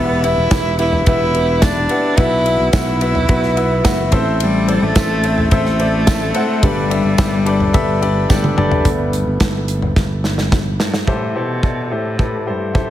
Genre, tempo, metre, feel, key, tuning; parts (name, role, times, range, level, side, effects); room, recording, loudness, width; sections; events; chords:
piano-driven pop; 108 BPM; 4/4; straight; G major; A4 = 440 Hz
rich cello; melody; 0.0-12.9 s; F#2 to E4; -19 LUFS; equal
bright grand piano; accompaniment; 0.0-12.9 s; C2 to F#5; -19 LUFS; left 1 dB
fingered electric bass; bass; 0.0-10.8 s; E1 to B1; -19 LUFS; equal
modern studio drum kit; drums; 0.2-12.9 s; hi-hat, kick drum, ride cymbal, snare drum, toms; -18 LUFS; equal
tambourine; percussion; 0.5-8.4 s; -34 LUFS; right 9 dB
moderate recital hall reverb, RT60 1.4 s, studio ambience; heavily compressed radio sound, multiband compression; -13 LUFS; side -12 dB against mid
0.0-8.8 A section; 8.8-11.1 B section; 11.1-12.9 C section
grand piano fill 3.6-4.4; drum fill 8.3-8.8, 10.0-11.1; grand piano solo 8.8-11.1
0.0 Em; 2.2 Bsus4; 4.1 Am; 6.6 Gadd9; 11.1 C6